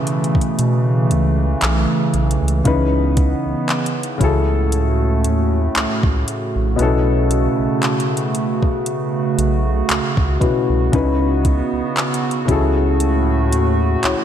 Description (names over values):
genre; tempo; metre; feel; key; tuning
contemporary R&B; 58 BPM; 4/4; swing 54% on 16ths; unclear; A4 = 438 Hz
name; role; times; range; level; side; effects
dark baby grand piano; accompaniment; 0.0-14.2 s; B2 to E5; -21 LUFS; left 3 dB; none
hollow soft pad; sustained chords; 0.0-14.2 s; A2 to F#4; -20 LUFS; right 2 dB; chorus, sidechain pumping
smooth R&B drum kit; drums; 0.1-14.2 s; handclaps, hi-hat, kick drum; -21 LUFS; equal; none
round analog bass; bass; 0.6-14.2 s; A#1 to B2; -18 LUFS; equal; none
room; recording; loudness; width
moderate lush hall reverb, RT60 3.0 s; dreamy mix soaked in reverb; -15 LUFS; side -9 dB against mid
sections
0.0-14.2 A section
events
kick muted 0.6-2.7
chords
0.0 B9sus4; 2.7 C#m7; 4.2 F#m9/C#; 6.8 B9sus4; 10.9 C#m7; 12.5 F#m9/C#